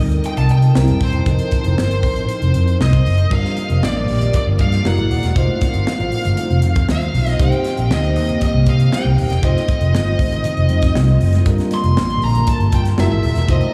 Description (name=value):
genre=polished 1980s jazz-funk pop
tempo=118 BPM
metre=4/4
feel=straight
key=unclear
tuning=A4 = 440 Hz
part: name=FM electric piano with soft pad layer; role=accompaniment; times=0.0-13.7 s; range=F3 to C5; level=-26 LUFS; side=equal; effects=tremolo, subtle chorus
part: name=fingered electric bass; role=bass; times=0.0-13.6 s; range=Eb1 to C3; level=-18 LUFS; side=equal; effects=none
part: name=crisp fusion drum kit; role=drums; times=0.1-13.7 s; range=crash cymbal, hi-hat, kick drum, snare drum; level=-23 LUFS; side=equal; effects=none
part: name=high-gain lead guitar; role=melody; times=0.3-13.7 s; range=C5 to C6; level=-26 LUFS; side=equal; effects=distortion, diffuse ambient delay
part: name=chorused pulse-width pad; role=sustained chords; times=3.3-13.7 s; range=D3 to G4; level=-28 LUFS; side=equal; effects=none
part: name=congas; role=percussion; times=3.3-13.6 s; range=none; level=-33 LUFS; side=equal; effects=none
room=moderate huge ambient reverb, RT60 8.0 s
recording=dreamy mix soaked in reverb, studio ambience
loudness=-16 LUFS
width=mono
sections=0.0-3.3 A section; 3.3-13.7 B section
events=none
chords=0.0 Cm7; 0.8 C7; 1.3 F7sus4; 3.3 Gm7; 4.8 F#9; 5.4 F7; 7.4 Cm7; 9.4 F7; 11.5 Gm7; 13.0 F#9